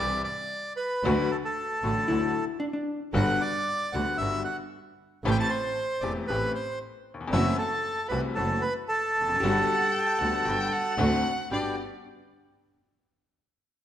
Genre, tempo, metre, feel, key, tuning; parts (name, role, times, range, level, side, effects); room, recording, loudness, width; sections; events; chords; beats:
tango; 115 BPM; 4/4; rubato; G major; A4 = 442 Hz
bandoneon; melody; 0.0-11.8 s; G4 to A5; -28 LUFS; right 1 dB
bright upright piano; accompaniment; 0.0-11.7 s; E1 to G4; -32 LUFS; left 4 dB
warm chamber string section; stabs; 0.0-11.7 s; G3 to G4; -37 LUFS; equal
clear double bass; bass; 0.0-11.7 s; E1 to D2; -30 LUFS; right 2 dB
vintage hollow-body jazz guitar; second line; 2.1-3.0, 9.4-11.8 s; D4 to G4; -33 LUFS; left 3 dB
rich violin; second line; 9.4-11.8 s; D5 to G5; -32 LUFS; equal
wet recital hall reverb, RT60 1.5 s; -25 LUFS; side -10 dB against mid
0.0-11.5 A section; 11.5-13.6 B section
0.0 C; 1.0 D; 3.1 Gmaj7; 5.2 Am7; 7.3 F#m7b5; 9.4 Gmaj7; 11.0 D7; 11.5 Gmaj7
0.52 | 1.04 1.56 2.08 2.61 | 3.14 3.67 4.19 4.72 | 5.24 5.76 6.28 6.80 | 7.33 7.85 8.37 8.89 | 9.41 9.94 10.46 10.99 | 11.52